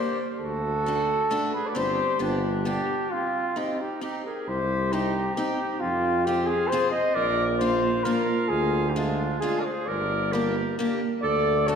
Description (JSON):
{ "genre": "alpine folk, alpine dance band", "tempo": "134 BPM", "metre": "3/4", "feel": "rubato", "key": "C minor", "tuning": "A4 = 440 Hz", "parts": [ { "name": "warm flugelhorn", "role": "melody", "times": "0.0-11.8 s", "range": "Eb4 to Eb5", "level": "-26 LUFS", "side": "left 1 dB", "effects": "tape echo" }, { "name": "bright clarinet", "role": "second line", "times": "0.0-11.8 s", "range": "C4 to C5", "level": "-30 LUFS", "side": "right 3 dB", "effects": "none" }, { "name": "picked steel-string acoustic guitar", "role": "accompaniment", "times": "0.0-11.8 s", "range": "Ab3 to Ab4", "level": "-31 LUFS", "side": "left 1 dB", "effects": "none" }, { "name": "warm tuba", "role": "bass", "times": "0.4-11.8 s", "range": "G1 to F2", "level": "-30 LUFS", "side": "equal", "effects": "none" } ], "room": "wet concert hall reverb, RT60 1.9 s", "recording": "heard from further back in the room", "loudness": "-23 LUFS", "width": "side -7 dB against mid", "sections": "0.0-4.5 A section; 4.5-11.8 A section", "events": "break 3.1-4.5", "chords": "0.4 D; 1.8 Gsus4; 2.2 G; 3.1 Cm; 5.8 Fm; 7.2 Bb; 8.5 Ddim; 9.9 Gm; 11.2 D5" }